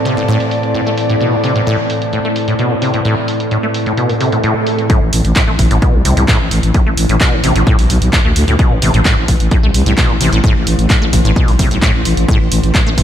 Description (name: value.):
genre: driving peak-time techno.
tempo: 130 BPM.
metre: 4/4.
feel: straight.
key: A minor.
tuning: A4 = 440 Hz.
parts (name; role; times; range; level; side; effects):
metallic inharmonic drone; drone; 0.0-13.0 s; A2 to E3; -20 LUFS; equal; chorus, built-in reverb, sidechain pumping.
airy breathy pad; texture; 0.0-4.9 s; C4 to A5; -20 LUFS; equal; chorus, sidechain pumping.
acid bass, saw; riff; 0.1-12.9 s; A2 to A3; -17 LUFS; equal; wide subtle chorus, sidechain pumping, analog delay.
punchy analog drum machine; drums; 0.1-13.0 s; handclaps, hi-hat; -20 LUFS; right 1 dB; low-pass filter on hats, low-pass filter on snare.
swell; sound effects; 4.2-4.9 s; none; -21 LUFS; right 4 dB; none.
electronic kick drum; drums; 4.9-13.0 s; none; -13 LUFS; equal; none.
growling FM bass; bass; 5.0-13.0 s; A1 to D2; -14 LUFS; equal; sidechain pumping.
room: moderate lush hall reverb, RT60 1.8 s, digital ambience.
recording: dreamy mix soaked in reverb.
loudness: -10 LUFS.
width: side -10 dB against mid.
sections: 0.0-4.9 A section; 4.9-13.0 B section.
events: swell 4.2-4.9; drop 4.9-13.0.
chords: 0.0 Am; 4.9 A5.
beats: 0.28 0.74 | 1.21 1.67 2.13 2.59 | 3.05 3.51 3.98 4.44 | 4.90 5.36 5.82 6.28 | 6.75 7.21 7.67 8.13 | 8.59 9.05 9.51 9.98 | 10.44 10.90 11.36 11.82 | 12.28 12.74.